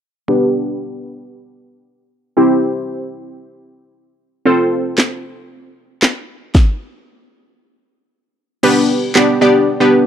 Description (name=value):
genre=dance-pop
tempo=115 BPM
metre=4/4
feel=straight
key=unclear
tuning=A4 = 440 Hz
part: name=glassy wavetable pluck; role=accompaniment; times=0.3-10.1 s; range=B3 to D5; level=-13 LUFS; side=equal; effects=chorus, sidechain pumping, low-pass filter
part: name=house drum kit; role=drums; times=5.0-9.3 s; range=crash cymbal, handclaps, kick drum, snare drum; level=-14 LUFS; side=equal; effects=none
room=little or no reverb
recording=dry, close 1970s-style studio recording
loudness=-13 LUFS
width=side -9 dB against mid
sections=0.3-8.6 A section; 8.6-10.1 B section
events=stop 6.5-8.6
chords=0.3 G; 2.4 C; 4.5 F; 6.3 N.C.; 8.6 G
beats=| 0.29 0.81 1.33 1.85 | 2.37 2.90 3.42 3.94 | 4.46 4.98 5.50 6.03 | 6.55 7.07 7.59 8.11 | 8.63 9.16 9.68